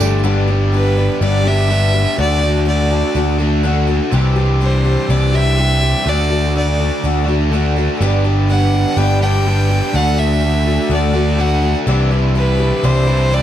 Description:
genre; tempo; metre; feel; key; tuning
folk rock and heartland rock; 124 BPM; 4/4; straight; D mixolydian; A4 = 440 Hz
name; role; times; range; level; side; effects
picked twelve-string acoustic guitar; accompaniment; 0.0-13.4 s; G2 to G4; -22 LUFS; left 5 dB; none
rich studio string section; sustained chords; 0.0-13.4 s; G3 to D5; -28 LUFS; right 1 dB; none
biting overdriven guitar; riff; 0.0-13.4 s; G2 to G4; -20 LUFS; right 2 dB; none
picked electric bass; bass; 0.0-13.4 s; G1 to D2; -15 LUFS; equal; none
clear fiddle; melody; 0.8-13.4 s; B4 to G5; -20 LUFS; equal; plate reverb
room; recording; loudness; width
light reverb; dark, warm production; -13 LUFS; side -11 dB against mid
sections
0.2-13.4 A section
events
none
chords
0.2 G; 2.2 D; 4.1 Cadd9; 6.1 D; 8.0 G; 9.9 D; 11.9 Cadd9

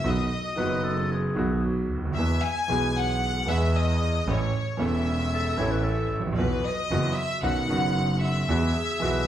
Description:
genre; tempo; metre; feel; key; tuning
tango; 114 BPM; 4/4; rubato; E major; A4 = 440 Hz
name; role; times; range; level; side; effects
rich chamber violin section; second line; 0.0-9.3 s; B4 to G#5; -29 LUFS; left 2 dB; none
clear concert grand piano; accompaniment; 0.0-9.3 s; E1 to A4; -27 LUFS; right 2 dB; none
clear double bass; bass; 0.0-9.3 s; E1 to E2; -28 LUFS; equal; none
growling clarinet; second line; 0.6-2.0, 5.3-9.3 s; F#4 to C#5; -33 LUFS; left 2 dB; analog delay
room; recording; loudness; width
wet large studio reverb, RT60 1.3 s; heard from further back in the room; -23 LUFS; side -11 dB against mid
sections
0.0-9.3 A section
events
violin section solo 0.0-9.3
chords
0.0 B; 2.2 E; 4.3 A; 6.4 Bsus4; 7.4 Badd9; 8.5 Eadd9

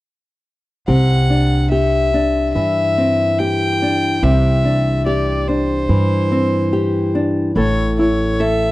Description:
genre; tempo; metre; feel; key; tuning
acoustic folk duo or small band; 72 BPM; 4/4; straight; unclear; A4 = 440 Hz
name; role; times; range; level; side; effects
warm fiddle; melody; 0.9-8.7 s; C5 to G5; -20 LUFS; left 1 dB; none
nylon-string guitar; accompaniment; 0.9-8.7 s; A2 to A4; -17 LUFS; left 1 dB; none
upright bass; bass; 0.9-8.7 s; A1 to G2; -19 LUFS; right 1 dB; none
room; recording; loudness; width
small room ambience; dry, close 1970s-style studio recording; -14 LUFS; side -18 dB against mid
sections
0.9-8.7 A section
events
none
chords
0.9 Cadd9; 7.6 A

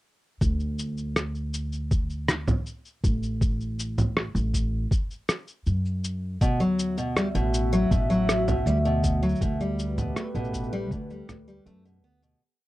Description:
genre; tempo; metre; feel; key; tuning
folktronica; 80 BPM; 4/4; straight; D major; A4 = 440 Hz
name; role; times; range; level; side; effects
upright bass; bass; 0.4-12.3 s; A1 to F#2; -28 LUFS; equal; tube saturation
electronic kick drum; drums; 0.4-11.1 s; none; -25 LUFS; equal; none
electronic shaker, rim click and congas; drums; 0.4-12.4 s; none; -27 LUFS; equal; none
warbly tape-like pad; sustained chords; 7.2-12.4 s; A3 to E5; -31 LUFS; equal; chorus, built-in reverb
picked steel-string acoustic guitar; arpeggios; 6.4-12.4 s; B2 to B3; -27 LUFS; equal; none
room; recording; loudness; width
little or no reverb; dry, close 1970s-style studio recording; -24 LUFS; side -17 dB against mid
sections
0.4-12.4 groove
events
fade-out 8.4-12.4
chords
0.4 D; 6.4 Esus2; 9.4 Gadd9

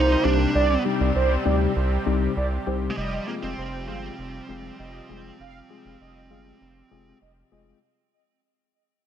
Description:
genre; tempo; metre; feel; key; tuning
synth-pop; 99 BPM; 4/4; straight; unclear; A4 = 440 Hz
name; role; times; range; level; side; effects
bluesy overdriven lead guitar; melody; 0.0-7.2 s; G3 to Eb4; -29 LUFS; right 1 dB; distortion, ping-pong delay
mellow synth brass; second line; 0.0-7.6 s; C5 to F5; -27 LUFS; right 4 dB; chorus, ping-pong delay
brassy analog pad; sustained chords; 0.0-7.8 s; C3 to G4; -32 LUFS; right 2 dB; chorus
round analog bass; bass; 0.0-7.7 s; F1 to D2; -26 LUFS; equal; none
mellow tine electric piano; accompaniment; 0.2-7.8 s; G3 to Ab4; -29 LUFS; left 10 dB; none
room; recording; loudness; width
light reverb; none; -21 LUFS; side -9 dB against mid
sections
0.0-7.8 A section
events
fade-out 0.0-7.8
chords
0.0 Cmadd9; 3.0 Fmadd9

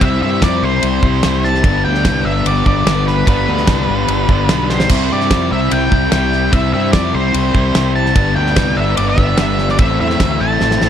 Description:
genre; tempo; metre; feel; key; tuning
classic rock; 147 BPM; 4/4; straight; unclear; A4 = 440 Hz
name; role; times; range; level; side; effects
octave-fuzz lead guitar; melody; 0.0-10.9 s; B4 to A5; -19 LUFS; right 1 dB; distortion, slapback echo
tonewheel organ; sustained chords; 0.0-10.9 s; G3 to C5; -27 LUFS; right 3 dB; none
distorted electric guitar; riff; 0.0-10.9 s; G2 to E4; -22 LUFS; right 16 dB; distortion
sludgy distorted guitar; riff; 0.0-10.9 s; G2 to E4; -18 LUFS; left 11 dB; overdrive
fuzz fingered electric bass; bass; 0.0-10.9 s; G1 to G2; -19 LUFS; right 1 dB; overdrive
damped 70s drum kit; drums; 0.0-10.9 s; crash cymbal, kick drum, ride cymbal, snare drum; -18 LUFS; right 1 dB; none
room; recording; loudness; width
light reverb; none; -12 LUFS; side -9 dB against mid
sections
0.0-10.9 A section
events
drum fill 4.7, 10.6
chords
0.0 C; 1.6 G; 4.9 C; 8.2 G; 9.8 Am

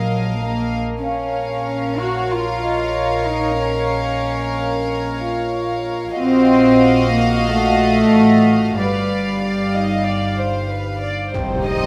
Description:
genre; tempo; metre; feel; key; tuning
cinematic, suspense film score; 93 BPM; 4/4; straight; Bb harmonic minor; A4 = 440 Hz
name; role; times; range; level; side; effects
warm symphonic violin section; melody; 0.0-11.9 s; Eb5 to F5; -29 LUFS; equal; none
warm symphonic violin section; second line; 0.0-11.9 s; Eb4 to Eb5; -25 LUFS; equal; none
warm studio cello section; bass; 0.0-11.9 s; C3 to Gb4; -20 LUFS; equal; none
warm symphonic double bass section; bass; 0.0-11.9 s; G1 to C2; -28 LUFS; equal; none
vibraphone with medium mallets; texture; 0.0-11.9 s; Eb4 to A5; -30 LUFS; equal; none
dark symphonic viola section; accompaniment; 11.3-11.9 s; G3 to C4; -26 LUFS; equal; none
impact; sound effects; 11.3-11.9 s; none; -27 LUFS; equal; none
room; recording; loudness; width
moderate recital hall reverb, RT60 1.7 s; none; -18 LUFS; mono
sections
0.0-11.3 A section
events
impact 11.3-11.9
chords
0.0 Ebmadd9/Bb; 1.0 Bbm; 6.2 Ebmadd9/Bb; 8.8 G7; 11.3 Cm

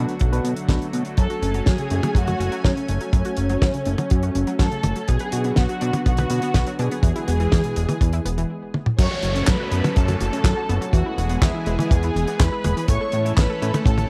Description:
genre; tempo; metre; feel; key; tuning
italo disco; 123 BPM; 4/4; straight; F# minor; A4 = 440 Hz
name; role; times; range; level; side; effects
lush unison pad; sustained chords; 0.0-14.1 s; D3 to G#5; -32 LUFS; equal; chorus
tine electric piano; stabs; 0.0-0.9 s; B3 to B4; -31 LUFS; equal; tape echo
fat analog bass; bass; 0.0-14.1 s; E1 to B2; -26 LUFS; equal; none
damped 70s drum kit; drums; 0.1-14.1 s; crash cymbal, handclaps, hi-hat, snare drum, toms; -29 LUFS; equal; none
kick drum; drums; 0.2-14.0 s; none; -21 LUFS; equal; none
dark studio violin section; melody; 1.2-14.1 s; C#4 to C#6; -30 LUFS; equal; tape echo
analog pluck; arpeggios; 1.2-14.0 s; B2 to B4; -32 LUFS; equal; chorus, tape echo
downlifter; sound effects; 9.0-12.9 s; none; -36 LUFS; equal; none
room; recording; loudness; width
light reverb; dry, close 1970s-style studio recording; -21 LUFS; mono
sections
0.0-9.0 A section; 9.0-14.1 B section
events
stop 8.5-9.0; drum fill 8.7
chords
0.0 Bm; 1.2 F#madd9; 5.1 Bm; 7.0 E; 9.0 F#m; 10.9 E; 12.9 A

